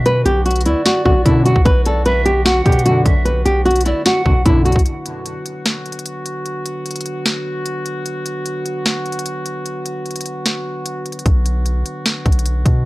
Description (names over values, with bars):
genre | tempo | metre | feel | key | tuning
hip hop, trap | 150 BPM | 4/4 | half-time | B minor | A4 = 440 Hz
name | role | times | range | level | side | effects
mellow hollow pan flute | second line | 0.0-4.4 s | D5 to F#5 | -26 LUFS | right 2 dB | tape echo
dark brass ensemble | sustained chords | 0.0-12.9 s | D3 to F#4 | -26 LUFS | equal | stereo widening
long sustained 808-style bass | bass | 0.0-4.9, 11.3-12.9 s | B1 to B2 | -17 LUFS | equal | none
nylon-string guitar | melody | 0.1-4.8 s | E4 to B4 | -16 LUFS | equal | none
trap drum kit | drums | 0.1-12.7 s | hi-hat, kick drum, snare drum | -17 LUFS | equal | none
analog synth brass | stabs | 1.1-4.7 s | B1 to D3 | -22 LUFS | equal | chorus, tape echo
room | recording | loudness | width
small room ambience | dry, gritty hardware recording, cassette tape | -15 LUFS | side -20 dB against mid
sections
0.0-4.9 A section; 4.9-12.9 B section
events
break 4.9-11.3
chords
0.0 Bm